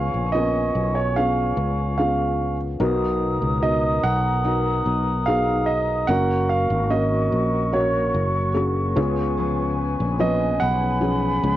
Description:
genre	pop ballad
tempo	73 BPM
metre	4/4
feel	straight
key	unclear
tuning	A4 = 443 Hz
part	warm concert grand piano	melody	0.0-11.6 s	C#5 to F#5	-24 LUFS	right 4 dB	cassette tape
part	felt-muted upright piano	accompaniment	0.0-11.6 s	B2 to C#5	-24 LUFS	left 1 dB	cassette tape
part	mellow flute section	sustained chords	0.0-11.6 s	F#4 to D#6	-28 LUFS	left 2 dB	cassette tape
part	fretless electric bass	bass	0.0-11.6 s	F#1 to C#2	-24 LUFS	equal	none
part	fingerpicked steel-string acoustic guitar	arpeggios	9.4-11.6 s	C#3 to G#4	-31 LUFS	left 7 dB	cassette tape
room	light reverb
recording	home recording on cassette, nothing above 7.7 kHz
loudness	-19 LUFS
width	side -13 dB against mid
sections	0.0-2.8 A section; 2.8-11.6 B section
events	none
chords	0.0 C#7; 2.8 Bmaj7; 6.1 F#; 9.0 C#7

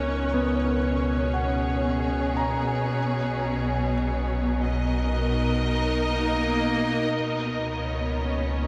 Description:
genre	ambient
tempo	58 BPM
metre	4/4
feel	straight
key	unclear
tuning	A4 = 441 Hz
part	clear studio string section	sustained chords	0.0-8.7 s	B2 to D#5	-28 LUFS	equal	low-pass filter
part	felt-muted upright piano	arpeggios	0.0-7.2 s	B3 to A#5	-34 LUFS	equal	tape echo
part	round analog bass	bass	0.0-8.7 s	B1 to C#2	-31 LUFS	equal	none
part	glass harmonica	texture	0.0-7.2 s	F#6	-46 LUFS	equal	none
part	clear cello	melody	6.1-8.7 s	A#3 to B3	-34 LUFS	equal	tape echo
room	wet huge ambient reverb, RT60 8.3 s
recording	none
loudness	-25 LUFS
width	mono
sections	0.0-7.1 A section; 7.1-8.7 A section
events	filter sweep on string section 0.0-7.1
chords	0.0 C#7sus4; 3.0 Bmaj7; 7.1 C#5

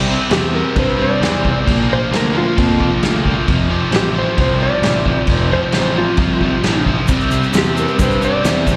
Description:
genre	garage rock duo or trio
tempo	133 BPM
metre	4/4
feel	straight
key	unclear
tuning	A4 = 438 Hz
part	overdriven electric guitar	riff	0.0-8.8 s	F2 to C4	-21 LUFS	equal	slapback echo
part	fuzz picked electric bass	bass	0.0-8.8 s	F1 to G2	-22 LUFS	equal	overdrive
part	clean lap steel guitar	melody	0.3-8.8 s	F4 to D5	-23 LUFS	equal	tape echo
part	vintage drum kit	drums	0.3-8.8 s	crash cymbal, kick drum, snare drum	-21 LUFS	equal	none
part	egg shaker	percussion	7.1-8.8 s	none	-37 LUFS	equal	none
room	light reverb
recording	live gig heard through the venue's PA, recital hall reverb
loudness	-16 LUFS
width	mono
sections	0.0-8.8 A section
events	none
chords	0.0 C; 1.7 Bb; 3.5 F; 7.1 C

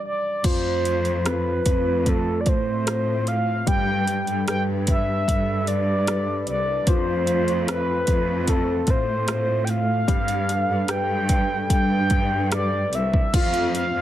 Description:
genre	pop ballad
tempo	74 BPM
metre	4/4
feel	straight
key	unclear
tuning	A4 = 441 Hz
part	warm concert grand piano	accompaniment	0.0-14.0 s	F3 to C5	-31 LUFS	left 6 dB	none
part	mellow horn-like synth lead	melody	0.1-14.0 s	A4 to G5	-24 LUFS	equal	chorus
part	warm analog pad	sustained chords	0.6-14.0 s	G3 to B4	-31 LUFS	right 1 dB	chorus
part	clear symphonic cello section	bass	0.4-14.0 s	C2 to A2	-25 LUFS	right 1 dB	none
part	deep house drum kit	drums	0.4-13.9 s	crash cymbal, hi-hat, kick drum, rim click	-23 LUFS	equal	none
room	little or no reverb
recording	none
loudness	-20 LUFS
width	side -12 dB against mid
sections	0.5-13.3 A section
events	break 0.0-0.5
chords	0.5 F; 3.7 Gadd9; 6.9 F; 10.1 Gadd9; 13.3 F

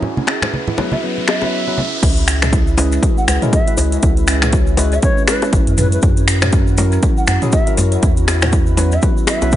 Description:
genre	afro house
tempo	120 BPM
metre	4/4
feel	swing 58% on 16ths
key	C# dorian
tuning	A4 = 440 Hz
part	warm analog pad	sustained chords	0.0-9.6 s	C#4 to E5	-29 LUFS	left 1 dB	chorus, sidechain pumping
part	kalimba	arpeggios	0.0-9.6 s	C#4 to C#5	-24 LUFS	right 3 dB	sidechain pumping, dub echo
part	congas	percussion	0.0-1.9 s	none	-22 LUFS	right 2 dB	none
part	riser	sound effects	0.0-2.0 s	none	-26 LUFS	equal	none
part	house drum kit	drums	0.3-9.6 s	crash cymbal, finger snaps, hi-hat, toms	-19 LUFS	equal	overdrive, dub echo
part	bongos	percussion	0.3-9.5 s	none	-21 LUFS	left 4 dB	none
part	bright tine electric piano	stabs	0.8-9.6 s	F#3 to B4	-24 LUFS	left 4 dB	sidechain pumping, dub echo
part	hollow bansuri	melody	0.9-9.6 s	B4 to F#5	-25 LUFS	right 1 dB	dub echo
part	round analog bass	bass	2.0-9.6 s	G#1 to F#2	-17 LUFS	equal	sidechain pumping
part	electronic kick drum	drums	2.0-9.6 s	none	-16 LUFS	equal	overdrive
part	cabasa	percussion	2.0-9.6 s	none	-30 LUFS	left 3 dB	none
room	small room ambience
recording	echo-heavy mix, nothing above 10.4 kHz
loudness	-12 LUFS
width	side -13 dB against mid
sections	0.0-2.0 A section; 2.0-9.6 B section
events	riser 0.0-2.0; filter sweep on kalimba 0.0-2.0; filter sweep on tine electric piano 0.0-2.0; drop 2.0-9.6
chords	0.0 Esus2; 2.0 C#m7; 6.0 F#7; 8.0 Esus2

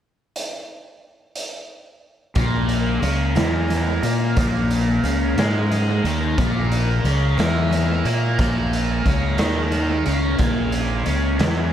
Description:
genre	psychedelic rock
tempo	60 BPM (dotted quarters)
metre	6/8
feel	straight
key	unclear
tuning	A4 = 442 Hz
part	raw garage drum kit	drums	0.4-11.6 s	hi-hat, kick drum, snare drum	-25 LUFS	equal	tape echo
part	combo organ	sustained chords	2.4-11.7 s	Bb3 to Bb4	-30 LUFS	right 5 dB	wide subtle chorus
part	thick fuzz guitar	riff	2.4-11.7 s	Bb2 to Bb4	-22 LUFS	left 1 dB	distortion, phaser, tape echo
part	fuzz fingered electric bass	bass	2.4-11.7 s	Bb1 to Bb2	-22 LUFS	equal	overdrive
part	congas	percussion	2.4-11.6 s	none	-33 LUFS	left 2 dB	none
room	light reverb, small room ambience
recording	echo-heavy mix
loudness	-18 LUFS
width	side -10 dB against mid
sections	0.4-2.4 A section; 2.4-11.7 B section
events	none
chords	0.4 N.C.; 2.4 Bbm7b5

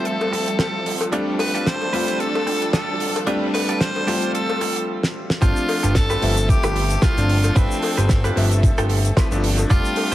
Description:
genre	nu-disco, nu disco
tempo	112 BPM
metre	4/4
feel	swing 56% on 16ths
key	G mixolydian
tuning	A4 = 441 Hz
part	raspy tenor saxophone	melody	0.0-10.1 s	C4 to C5	-25 LUFS	equal	low-pass filter, analog delay
part	clear electric grand piano	accompaniment	0.0-10.1 s	F3 to E5	-25 LUFS	left 2 dB	sidechain pumping
part	warm symphonic string section	sustained chords	0.0-10.1 s	F3 to D6	-30 LUFS	equal	sidechain pumping
part	direct-recorded clean electric guitar	riff	0.0-10.1 s	C4 to C5	-29 LUFS	right 2 dB	lush chorus
part	damped 70s drum kit	drums	0.1-10.1 s	hi-hat, shaker, snare drum	-26 LUFS	right 1 dB	none
part	cowbell	percussion	0.2-10.1 s	none	-29 LUFS	left 3 dB	none
part	fat analog bass	bass	5.4-10.1 s	F1 to G1	-20 LUFS	equal	none
part	electronic kick drum	drums	5.4-9.8 s	none	-18 LUFS	equal	none
room	light reverb, studio reverb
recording	heavily compressed radio sound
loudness	-17 LUFS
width	side -14 dB against mid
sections	0.0-5.4 A section; 5.4-10.1 B section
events	build-up 0.0-5.4; drum fill 5.0-5.4; drop 5.4-10.1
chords	0.0 G9sus4; 1.1 F69; 5.4 G9sus4

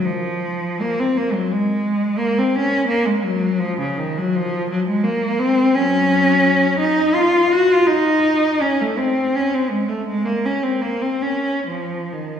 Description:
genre	classical, free, expressive piece for unaccompanied cello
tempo	84 BPM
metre	3/4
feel	uneven beats, rubato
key	Db major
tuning	A4 = 440 Hz
part	rich cello	solo	0.0-12.4 s	Db3 to Gb4	-16 LUFS	equal	none
room	wet concert hall reverb, RT60 2.1 s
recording	heard from further back in the room, studio reverb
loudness	-16 LUFS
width	side -8 dB against mid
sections	0.0-12.4 A section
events	none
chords	none

